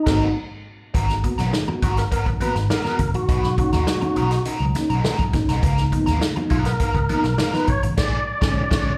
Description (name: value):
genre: funk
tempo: 102 BPM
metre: 4/4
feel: straight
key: unclear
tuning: A4 = 439 Hz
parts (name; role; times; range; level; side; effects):
- tonewheel organ; melody; 0.0-9.0 s; Eb4 to D5; -27 LUFS; equal; overdrive, fast rotary speaker, slapback echo
- biting overdriven guitar; accompaniment; 0.1-8.9 s; Cb4 to D5; -30 LUFS; equal; wah, plate reverb, slapback echo
- mellow reed electric piano; stabs; 0.1-8.9 s; Ab2 to Gb4; -30 LUFS; equal; fast tremolo
- vintage muted picked electric bass; bass; 0.1-8.9 s; Gb1 to D#2; -25 LUFS; equal; none
- swinging big-band drum kit; drums; 0.1-8.9 s; crash cymbal, hi-hat, kick drum, snare drum; -26 LUFS; equal; none
- congas; percussion; 1.1-7.8 s; none; -32 LUFS; equal; none
room: moderate club reverb, RT60 0.6 s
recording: live gig heard through the venue's PA, club reverb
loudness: -21 LUFS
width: mono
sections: 0.9-9.0 A section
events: band accent 0.0-0.9, 8.0-9.0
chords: 0.0 Ab9; 0.9 Abm9; 3.3 Bmaj7; 5.6 Db13; 8.0 Bb7#9